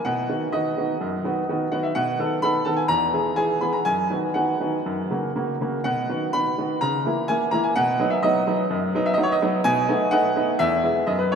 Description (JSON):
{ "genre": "classical-period piano sonatina", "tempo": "126 BPM", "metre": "4/4", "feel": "rubato", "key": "B major", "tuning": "A4 = 444 Hz", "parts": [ { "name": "bright baby grand piano", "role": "solo", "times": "0.0-11.4 s", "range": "E2 to B5", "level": "-20 LUFS", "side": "equal", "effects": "none" } ], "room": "wet cathedral reverb, RT60 5.3 s", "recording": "in a vast, echoing space", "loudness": "-20 LUFS", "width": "side -6 dB against mid", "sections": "0.0-11.4 A section", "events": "none", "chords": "0.1 B; 2.0 B7; 2.9 E; 3.9 B/F#; 4.9 F#; 5.9 B; 6.8 A#dim/C#; 7.8 B; 9.6 B7; 10.6 E", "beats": "| 0.06 0.53 1.01 1.49 | 1.97 2.44 2.90 3.38 | 3.87 4.36 4.86 5.36 | 5.85 6.34 6.81 7.29 | 7.76 8.23 8.71 9.18 | 9.65 10.12 10.60 11.09" }